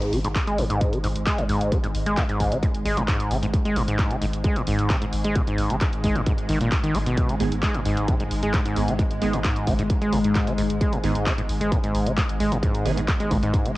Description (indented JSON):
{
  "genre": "driving peak-time techno",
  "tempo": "132 BPM",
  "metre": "4/4",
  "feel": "straight",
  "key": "unclear",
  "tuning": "A4 = 440 Hz",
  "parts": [
    { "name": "overdriven acid bass", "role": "riff", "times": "0.0-13.7 s", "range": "G#2 to B3", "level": "-25 LUFS", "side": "equal", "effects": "sidechain pumping, cassette tape, analog delay" },
    { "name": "saturated sub bass", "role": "bass", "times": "0.0-13.8 s", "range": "G#1", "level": "-29 LUFS", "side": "equal", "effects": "tube saturation, sidechain pumping, low-pass filter" },
    { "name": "swarming drone", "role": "drone", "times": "0.7-13.8 s", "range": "G#2 to G#3", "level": "-30 LUFS", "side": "equal", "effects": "built-in reverb, sidechain pumping, cassette tape" },
    { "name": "punchy analog drum machine", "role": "drums", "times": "0.0-13.7 s", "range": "handclaps, hi-hat", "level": "-32 LUFS", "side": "equal", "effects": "cassette tape" },
    { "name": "electronic kick drum", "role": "drums", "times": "0.4-13.6 s", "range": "none", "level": "-24 LUFS", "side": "equal", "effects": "distortion, overdrive, cassette tape" },
    { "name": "rave stab", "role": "stabs", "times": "7.4-13.0 s", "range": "D#3 to G#4", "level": "-31 LUFS", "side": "right 6 dB", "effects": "chorus, built-in reverb, sidechain pumping, cassette tape, analog delay" },
    { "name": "swell", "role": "sound effects", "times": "13.7-13.8 s", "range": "none", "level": "-44 LUFS", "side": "equal", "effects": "none" }
  ],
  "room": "moderate spring reverb, RT60 1.6 s, digital ambience",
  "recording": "home recording on cassette",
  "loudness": "-20 LUFS",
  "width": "side -18 dB against mid",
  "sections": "0.0-13.8 A section",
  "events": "none",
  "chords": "none",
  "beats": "0.35 0.81 1.26 | 1.72 2.17 2.63 3.08 | 3.54 3.99 4.45 4.90 | 5.36 5.81 6.26 6.72 | 7.17 7.63 8.08 8.54 | 8.99 9.45 9.90 10.36 | 10.81 11.27 11.72 12.17 | 12.63 13.08 13.54"
}